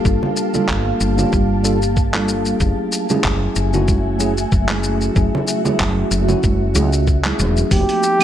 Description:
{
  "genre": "sunset chillout",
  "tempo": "94 BPM",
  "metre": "4/4",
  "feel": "swing 55% on 16ths",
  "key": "unclear",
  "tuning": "A4 = 441 Hz",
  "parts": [
    { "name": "mellow tine electric piano", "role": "accompaniment", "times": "0.0-8.2 s", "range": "F3 to A4", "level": "-21 LUFS", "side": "moving between left 3 dB and right 4 dB", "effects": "auto-pan, digital delay" },
    { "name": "ethereal airy pad", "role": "sustained chords", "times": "0.0-8.2 s", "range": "A3 to A5", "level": "-23 LUFS", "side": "right 1 dB", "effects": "ensemble chorus, built-in reverb" },
    { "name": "woody fretless electric bass", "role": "bass", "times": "0.1-7.8 s", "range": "E1 to C#2", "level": "-19 LUFS", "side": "equal", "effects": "tube saturation" },
    { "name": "dusty soul sampler-style drum kit", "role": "drums", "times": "0.1-8.2 s", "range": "claves, handclaps, hi-hat, shaker", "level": "-24 LUFS", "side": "left 1 dB", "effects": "none" },
    { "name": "electronic kick drum", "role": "drums", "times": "0.1-7.9 s", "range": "none", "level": "-19 LUFS", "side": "equal", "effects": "none" },
    { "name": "congas", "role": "percussion", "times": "0.2-7.4 s", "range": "none", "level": "-25 LUFS", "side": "right 3 dB", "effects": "none" },
    { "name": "warm flugelhorn", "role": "melody", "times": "7.7-8.2 s", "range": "G4", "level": "-16 LUFS", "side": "equal", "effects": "vintage 12-bit sampler grit" }
  ],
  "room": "light reverb, digital ambience",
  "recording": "none",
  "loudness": "-15 LUFS",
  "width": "side -11 dB against mid",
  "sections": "0.0-7.7 A section",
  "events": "none",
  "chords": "0.0 Gm9; 2.6 F#m9; 7.7 F9sus4"
}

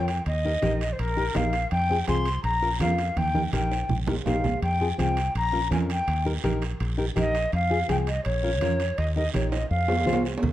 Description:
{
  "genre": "latin, cumbia",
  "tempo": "165 BPM",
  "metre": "4/4",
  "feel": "straight",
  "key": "unclear",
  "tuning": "A4 = 440 Hz",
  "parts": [
    { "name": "concert flute", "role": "melody", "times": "0.0-10.2 s", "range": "Bb4 to C6", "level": "-27 LUFS", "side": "left 1 dB", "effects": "none" },
    { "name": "nylon-string guitar", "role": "accompaniment", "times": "0.0-10.3 s", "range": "C4 to C5", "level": "-30 LUFS", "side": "left 3 dB", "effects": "none" },
    { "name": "fingered electric bass", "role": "bass", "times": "0.0-10.5 s", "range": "Bb1 to F2", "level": "-27 LUFS", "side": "equal", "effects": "none" },
    { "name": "guiro", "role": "percussion", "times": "0.1-10.5 s", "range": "none", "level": "-40 LUFS", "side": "right 7 dB", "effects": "none" },
    { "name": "timbales and cowbell", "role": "percussion", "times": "0.1-10.5 s", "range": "none", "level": "-34 LUFS", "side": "right 3 dB", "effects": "none" },
    { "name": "congas", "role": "percussion", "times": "0.3-10.5 s", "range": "none", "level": "-32 LUFS", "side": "right 4 dB", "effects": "none" }
  ],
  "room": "light reverb",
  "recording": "dark, warm production",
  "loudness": "-23 LUFS",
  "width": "side -13 dB against mid",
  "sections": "0.0-10.4 A section",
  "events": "drum fill 3.2-4.6, 9.5-10.4",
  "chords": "0.3 Eb; 1.7 Fmadd9; 2.4 Bbm; 3.2 Eb; 4.6 Fmadd9; 5.4 Bbm; 6.1 Eb; 7.5 Fm; 8.3 Bbm; 9.0 Eb; 9.7 Fm"
}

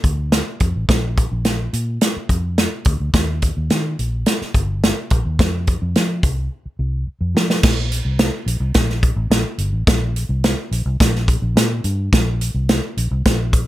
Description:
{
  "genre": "uptempo 1960s-style soul",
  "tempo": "107 BPM",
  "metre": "4/4",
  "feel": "straight",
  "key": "unclear",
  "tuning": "A4 = 440 Hz",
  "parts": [
    { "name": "vintage muted fingered electric bass", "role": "bass", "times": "0.0-13.6 s", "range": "G1 to F3", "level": "-20 LUFS", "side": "equal", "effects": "none" },
    { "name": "natural country drum kit", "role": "drums", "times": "0.0-13.7 s", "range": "crash cymbal, hi-hat, kick drum, snare drum", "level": "-17 LUFS", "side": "equal", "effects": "none" }
  ],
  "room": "light reverb",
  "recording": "none",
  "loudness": "-16 LUFS",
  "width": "side -15 dB against mid",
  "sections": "0.0-7.6 A section; 7.6-13.7 B section",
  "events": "drum fill 6.5-7.6",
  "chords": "none"
}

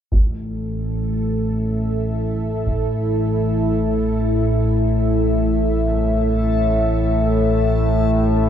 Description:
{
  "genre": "dark ambient drone",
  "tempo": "47 BPM",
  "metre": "4/4",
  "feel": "straight",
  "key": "A minor",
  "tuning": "A4 = 440 Hz",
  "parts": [
    { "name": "dark analog pad", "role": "sustained chords", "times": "0.6-8.5 s", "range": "E4 to E5", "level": "-23 LUFS", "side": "equal", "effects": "chorus" },
    { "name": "analog drone", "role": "drone", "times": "0.3-8.5 s", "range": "A1 to A2", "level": "-18 LUFS", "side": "equal", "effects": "chorus" },
    { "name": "taiko ensemble", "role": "percussion", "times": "0.1-2.9 s", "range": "none", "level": "-19 LUFS", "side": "equal", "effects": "low-pass filter on perc" },
    { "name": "backwards swelling texture", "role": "texture", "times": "1.0-8.5 s", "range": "A4", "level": "-41 LUFS", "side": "right 2 dB", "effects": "built-in reverb" },
    { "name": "clear grand piano", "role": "arpeggios", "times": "5.3-8.5 s", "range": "C2 to G3", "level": "-41 LUFS", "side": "left 5 dB", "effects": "none" }
  ],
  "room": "moderate huge ambient reverb, RT60 7.8 s",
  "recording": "in a vast, echoing space",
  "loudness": "-17 LUFS",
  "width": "side -9 dB against mid",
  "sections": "0.1-8.5 A section",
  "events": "fade-in on synth texture 0.1-8.5",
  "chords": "0.1 A5"
}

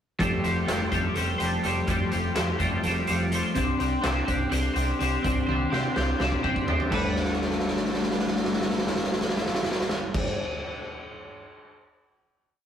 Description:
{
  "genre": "psychedelic rock",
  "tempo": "250 BPM (eighths)",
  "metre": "7/8",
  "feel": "straight",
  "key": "G mixolydian",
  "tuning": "A4 = 439 Hz",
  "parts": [
    { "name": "twelve-string electric guitar", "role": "riff", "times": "0.2-10.4 s", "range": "F3 to C5", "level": "-26 LUFS", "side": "left 1 dB", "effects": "rotary speaker" },
    { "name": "overdriven picked electric bass", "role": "bass", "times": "0.2-10.2 s", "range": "F1 to C3", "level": "-31 LUFS", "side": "right 1 dB", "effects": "none" },
    { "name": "raw garage drum kit", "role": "drums", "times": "0.2-11.7 s", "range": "crash cymbal, hi-hat, kick drum, snare drum, toms", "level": "-29 LUFS", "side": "right 1 dB", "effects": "none" }
  ],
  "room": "moderate stone room reverb, RT60 1.0 s",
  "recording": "rough rehearsal-room recording",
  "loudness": "-24 LUFS",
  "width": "side -9 dB against mid",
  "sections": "0.2-6.9 pre-chorus; 6.9-10.3 final chord",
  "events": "drum fill 5.5-6.9, 7.2-10.1",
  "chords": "0.2 Fadd9; 3.6 Csus2; 6.9 Gadd9"
}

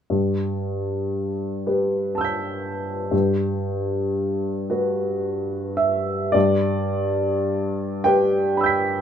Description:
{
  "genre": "classical, impressionist solo piano",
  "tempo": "34-41 BPM (dotted quarters)",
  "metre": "6/8",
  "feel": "rubato",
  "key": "G major",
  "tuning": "A4 = 441 Hz",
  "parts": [
    { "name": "clear baby grand piano", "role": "solo", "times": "0.1-9.0 s", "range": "G2 to B6", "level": "-20 LUFS", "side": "equal", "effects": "none" }
  ],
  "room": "light reverb",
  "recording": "minimal, uncompressed stereo recording",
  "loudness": "-20 LUFS",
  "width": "side -8 dB against mid",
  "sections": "0.1-6.3 A section; 6.3-9.0 B section",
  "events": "none",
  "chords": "0.1 G69; 3.1 Gmaj7; 6.3 G6"
}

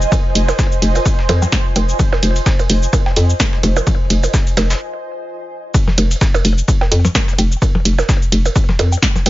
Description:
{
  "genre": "minimal techno",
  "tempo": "128 BPM",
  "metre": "4/4",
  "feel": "swing 56% on 16ths",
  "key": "F minor",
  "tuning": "A4 = 439 Hz",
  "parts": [
    { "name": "hollow knocking FM bass", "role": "bass", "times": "0.0-9.3 s", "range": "F1 to F2", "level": "-14 LUFS", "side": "equal", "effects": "sidechain pumping" },
    { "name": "punchy analog drum machine", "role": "drums", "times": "0.0-9.3 s", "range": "cabasa, hi-hat, snare drum", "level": "-20 LUFS", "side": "equal", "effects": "none" },
    { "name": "bubbling stepped-filter texture", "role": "texture", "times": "0.0-4.8 s", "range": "C5", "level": "-27 LUFS", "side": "right 3 dB", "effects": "chorus, built-in reverb, sidechain pumping" },
    { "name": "ethereal airy pad", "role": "texture", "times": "0.0-4.8 s", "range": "F4 to Ab5", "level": "-26 LUFS", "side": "right 2 dB", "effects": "ensemble chorus, built-in reverb, tremolo, sidechain pumping" },
    { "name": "breakbeat sampler-style drum kit", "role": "drums", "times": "0.1-9.3 s", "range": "hi-hat, ride cymbal, snare drum", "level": "-28 LUFS", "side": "right 2 dB", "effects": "high-pass filter on snare, sidechain pumping on cymbals, high-pass filter on cymbals, sidechain pumping on hats, high-pass filter on hats" },
    { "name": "electronic kick drum", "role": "drums", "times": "0.1-9.1 s", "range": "none", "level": "-16 LUFS", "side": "equal", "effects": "none" },
    { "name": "percussion blips and woodblock", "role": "percussion", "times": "0.1-9.3 s", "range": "none", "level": "-22 LUFS", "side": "right 2 dB", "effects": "ping-pong delay" }
  ],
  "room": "little or no reverb",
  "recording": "nothing above 7.5 kHz",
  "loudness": "-12 LUFS",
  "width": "side -16 dB against mid",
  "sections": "0.0-5.7 A section; 5.7-9.3 B section",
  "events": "stop 4.8-5.7; drop 5.7-9.3",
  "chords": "0.0 Fm7; 5.7 N.C."
}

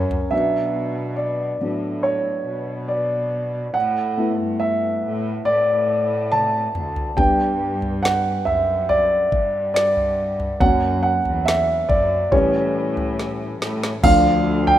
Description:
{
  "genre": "pop ballad",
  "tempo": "70 BPM",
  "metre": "4/4",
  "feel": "straight",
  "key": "B minor",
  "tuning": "A4 = 440 Hz",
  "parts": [
    { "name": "dark concert grand piano", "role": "accompaniment", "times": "0.0-14.8 s", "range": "E3 to A5", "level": "-19 LUFS", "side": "equal", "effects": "none" },
    { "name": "rich studio cello section", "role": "bass", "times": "0.0-14.8 s", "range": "D2 to B2", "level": "-27 LUFS", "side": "left 1 dB", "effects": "none" },
    { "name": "smooth R&B drum kit", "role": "drums", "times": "0.1-0.3, 6.3-14.8 s", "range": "crash cymbal, kick drum, snare drum, toms", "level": "-24 LUFS", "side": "equal", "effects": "none" }
  ],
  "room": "light reverb",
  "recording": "rough home demo mix",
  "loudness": "-18 LUFS",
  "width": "side -12 dB against mid",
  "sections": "0.3-14.0 A section",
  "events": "drum fill 0.0-0.3, 6.3-7.2, 13.2-14.0; grand piano solo 0.3-14.0",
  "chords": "0.3 Bm; 3.8 Asus2; 7.2 G; 10.6 F#; 12.3 A7; 14.0 Dm"
}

